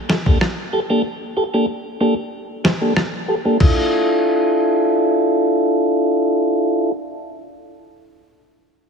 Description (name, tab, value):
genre	dancehall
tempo	94 BPM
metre	4/4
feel	straight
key	D minor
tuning	A4 = 438 Hz
part	tonewheel organ	accompaniment	0.1-6.9 s	Bb3 to C5	-17 LUFS	equal	stopped rotary speaker, sidechain pumping, low-pass filter
part	lo-fi sampler-style drum kit	drums	0.1-3.8 s	crash cymbal, kick drum, rim click, snare drum	-18 LUFS	equal	none
room	light reverb, digital ambience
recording	heavily compressed radio sound, multiband compression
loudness	-15 LUFS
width	side -6 dB against mid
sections	0.0-3.6 A section; 3.6-6.2 B section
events	filter sweep on tonewheel organ 0.0-3.6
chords	0.0 Gmadd9; 3.6 Dmadd9